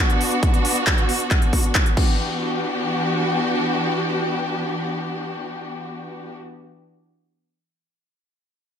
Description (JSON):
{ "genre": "uplifting trance", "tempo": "136 BPM", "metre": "4/4", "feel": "straight", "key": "E minor", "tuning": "A4 = 440 Hz", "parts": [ { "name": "warm studio string section", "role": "sustained chords", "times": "0.0-6.3 s", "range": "E3 to G4", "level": "-22 LUFS", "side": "equal", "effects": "sidechain pumping" }, { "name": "big-room dance drum kit", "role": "drums", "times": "0.1-2.1 s", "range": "crash cymbal, handclaps, hi-hat", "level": "-24 LUFS", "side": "left 1 dB", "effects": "none" }, { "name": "electronic kick drum", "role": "drums", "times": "0.4-2.1 s", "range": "none", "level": "-19 LUFS", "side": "equal", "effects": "none" } ], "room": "light reverb", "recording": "none", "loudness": "-19 LUFS", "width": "side -8 dB against mid", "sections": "0.0-2.2 A section; 2.2-5.7 B section", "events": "none", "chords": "0.0 Bm; 2.0 Em7" }